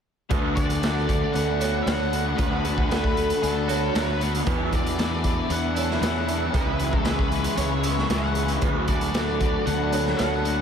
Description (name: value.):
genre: rock, shoegaze and dream pop.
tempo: 115 BPM.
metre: 4/4.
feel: straight.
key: unclear.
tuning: A4 = 440 Hz.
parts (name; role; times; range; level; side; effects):
ethereal airy pad; sustained chords; 1.3-10.6 s; G#4 to C#6; -33 LUFS; left 1 dB; ensemble chorus, built-in reverb.
picked twelve-string acoustic guitar; arpeggios; 0.3-10.6 s; F#4 to D5; -31 LUFS; right 5 dB; lush chorus, ping-pong delay.
crunchy overdriven guitar; riff; 0.3-10.6 s; C#3 to G#4; -29 LUFS; left 8 dB; analog chorus.
twangy electric guitar; riff; 0.3-10.6 s; E2 to F#4; -30 LUFS; right 7 dB; reverse reverb.
fuzz picked electric bass; bass; 0.3-10.6 s; C#2 to E2; -27 LUFS; equal; overdrive.
raw garage drum kit; drums; 0.3-10.6 s; hi-hat, kick drum, snare drum; -27 LUFS; equal; none.
octave-fuzz lead guitar; melody; 0.6-10.6 s; A4 to F#5; -33 LUFS; left 3 dB; distortion, ping-pong delay.
room: moderate lush hall reverb, RT60 2.4 s.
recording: dreamy mix soaked in reverb.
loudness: -21 LUFS.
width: side -7 dB against mid.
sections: 0.3-10.6 A section.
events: none.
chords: 0.3 D6; 4.5 E7sus4; 6.5 C#m7; 8.6 D6.